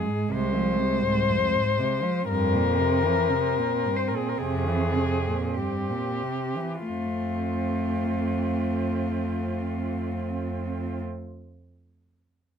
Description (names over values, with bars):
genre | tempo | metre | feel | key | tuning
classical, lyrical piece for cello ensemble | 44-65 BPM | 4/4 | rubato | F minor | A4 = 445 Hz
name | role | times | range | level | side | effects
muted cello | melody | 0.0-11.0 s | F4 to C5 | -28 LUFS | left 7 dB | none
muted cello | second line | 0.0-11.0 s | Ab3 to C4 | -32 LUFS | right 12 dB | none
muted cello | accompaniment | 0.0-11.0 s | F2 to A3 | -29 LUFS | left 1 dB | none
muted cello | bass | 0.3-11.0 s | C2 to F2 | -30 LUFS | right 2 dB | none
room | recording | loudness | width
light reverb | close, detailed microphones | -24 LUFS | side -7 dB against mid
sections
0.0-6.9 A section; 6.9-11.8 B section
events
slowing down 0.0-6.9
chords
0.0 Fm; 2.3 C7/F; 6.9 F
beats
0.32 1.29 | 2.29 3.32 4.40 5.58 | 6.88 8.11 9.34 10.55